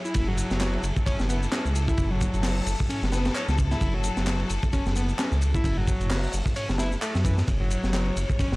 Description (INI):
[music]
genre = breakbeat, breaks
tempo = 131 BPM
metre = 4/4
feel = swing 57% on 16ths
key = F# minor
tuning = A4 = 439 Hz
[part]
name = rich studio string section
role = sustained chords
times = 0.0-8.6 s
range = F#3 to C#5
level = -36 LUFS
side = left 3 dB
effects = sidechain pumping
[part]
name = overdriven synth lead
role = riff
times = 0.0-8.5 s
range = E3 to E4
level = -31 LUFS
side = equal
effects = analog delay
[part]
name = dark detuned saw bass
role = bass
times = 0.1-8.6 s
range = F#1 to F#2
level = -26 LUFS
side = equal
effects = none
[part]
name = crunchy breakbeat drum kit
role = drums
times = 0.1-8.6 s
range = hi-hat, kick drum, ride cymbal, snare drum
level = -27 LUFS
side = equal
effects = none
[part]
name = electronic shaker and handclaps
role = drums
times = 0.1-8.6 s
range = none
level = -36 LUFS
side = equal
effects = none
[sound]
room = little or no reverb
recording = dry, gritty hardware recording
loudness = -23 LUFS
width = side -22 dB against mid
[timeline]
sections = 0.0-8.6 A section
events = none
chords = 0.0 F#m9